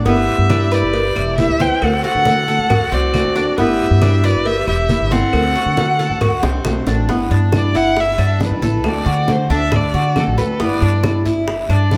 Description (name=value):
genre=latin, Cuban son and guajira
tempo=137 BPM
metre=4/4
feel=straight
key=G major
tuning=A4 = 440 Hz
part: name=flamenco guitar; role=accompaniment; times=0.0-12.0 s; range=D3 to F#4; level=-25 LUFS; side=equal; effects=none
part: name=Cuban tres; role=arpeggios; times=0.0-12.0 s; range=B3 to B4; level=-24 LUFS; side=equal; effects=none
part: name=upright bass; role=bass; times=0.0-12.0 s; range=E1 to D3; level=-21 LUFS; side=equal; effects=none
part: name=warm violin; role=melody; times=0.1-12.0 s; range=A4 to G5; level=-23 LUFS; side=equal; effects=none
part: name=dark clarinet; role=second line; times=0.1-6.7 s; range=F#4 to B4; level=-27 LUFS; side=equal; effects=none
part: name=congas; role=percussion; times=0.1-12.0 s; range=none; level=-25 LUFS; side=equal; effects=none
part: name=cowbell and bongos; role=percussion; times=0.1-12.0 s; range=none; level=-28 LUFS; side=equal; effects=none
part: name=guiro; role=percussion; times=0.1-12.0 s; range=none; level=-38 LUFS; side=equal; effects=none
part: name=claves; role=percussion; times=0.5-11.9 s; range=none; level=-37 LUFS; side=equal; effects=none
room=moderate plate reverb, RT60 2.9 s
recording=heard from further back in the room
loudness=-16 LUFS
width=mono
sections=0.0-7.1 A section; 7.1-12.0 B section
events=drum fill 6.4-7.1; violin solo 7.1-12.0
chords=0.1 G6; 1.8 D7; 3.6 G6; 5.3 D7; 7.1 G6; 8.8 D7; 10.6 G6